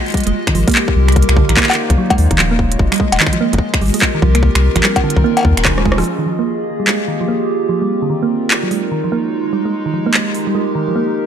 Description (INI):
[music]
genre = IDM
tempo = 147 BPM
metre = 4/4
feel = swing 62% on 16ths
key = F minor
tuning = A4 = 440 Hz
[part]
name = warbly tape-like pad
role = sustained chords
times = 0.0-11.3 s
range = Ab3 to Eb5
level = -19 LUFS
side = right 1 dB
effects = chorus, built-in reverb, phaser
[part]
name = thumb-piano-like synth pluck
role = arpeggios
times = 0.1-11.0 s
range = D3 to Bb3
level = -19 LUFS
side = right 3 dB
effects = chorus, digital delay
[part]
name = electronic kick drum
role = drums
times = 0.1-6.0 s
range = none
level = -18 LUFS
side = left 1 dB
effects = overdrive
[part]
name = organic electronic drum kit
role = drums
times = 0.1-10.4 s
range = cowbell, finger snaps, handclaps, hi-hat, rim click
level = -17 LUFS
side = left 1 dB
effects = overdrive, ping-pong delay
[part]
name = warm sub bass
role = bass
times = 0.3-6.0 s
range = Eb1 to Eb2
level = -14 LUFS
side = left 1 dB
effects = none
[sound]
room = light reverb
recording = none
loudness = -12 LUFS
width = side -8 dB against mid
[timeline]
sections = 0.0-6.1 A section; 6.1-11.3 B section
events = drum fill 5.7-6.1; band accent 6.0; filter sweep on synth arpeggio sound 6.1-11.3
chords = 0.0 Fm11; 1.2 Cm11; 2.0 Ebm11; 2.8 Fm11; 4.4 Cm11; 5.2 Ebm11; 6.1 Fm11; 7.7 Cm11; 8.5 Ebm11; 9.3 Fm11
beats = 0.34 0.75 | 1.16 1.57 1.98 2.39 | 2.79 3.20 3.61 4.02 | 4.43 4.83 5.24 5.65 | 6.06 6.47 6.88 7.28 | 7.69 8.10 8.51 8.92 | 9.32 9.73 10.14 10.55 | 10.96